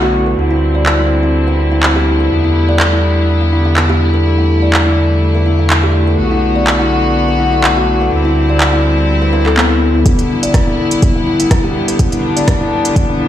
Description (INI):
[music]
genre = afro house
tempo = 124 BPM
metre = 4/4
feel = swing 54% on 16ths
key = E minor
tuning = A4 = 438 Hz
[part]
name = rich chamber string section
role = sustained chords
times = 0.0-13.3 s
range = D3 to F#4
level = -16 LUFS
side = left 2 dB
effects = sidechain pumping, low-pass filter
[part]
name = kalimba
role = arpeggios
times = 0.0-13.3 s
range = B3 to D5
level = -17 LUFS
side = equal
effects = sidechain pumping, low-pass filter, ping-pong delay
[part]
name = warm sub bass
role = bass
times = 0.0-10.0 s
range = B1 to E2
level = -14 LUFS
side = equal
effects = sidechain pumping
[part]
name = afro-pop drum kit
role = drums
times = 0.9-13.1 s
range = handclaps, hi-hat, rim click, toms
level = -17 LUFS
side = right 1 dB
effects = high-pass filter on cymbals, high-pass filter on snare, high-pass filter on hats, high-pass filter on toms
[part]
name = electronic kick drum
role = drums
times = 10.1-13.1 s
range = none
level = -13 LUFS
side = equal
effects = none
[sound]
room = light reverb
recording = played on a big sound system in a bare room, large studio reverb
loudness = -10 LUFS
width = side -11 dB against mid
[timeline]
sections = 0.0-10.1 A section; 10.1-13.3 B section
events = build-up 10.1-13.3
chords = 0.4 D9sus4; 2.3 Em7; 6.2 Bm7; 8.1 D9sus4; 10.1 Em7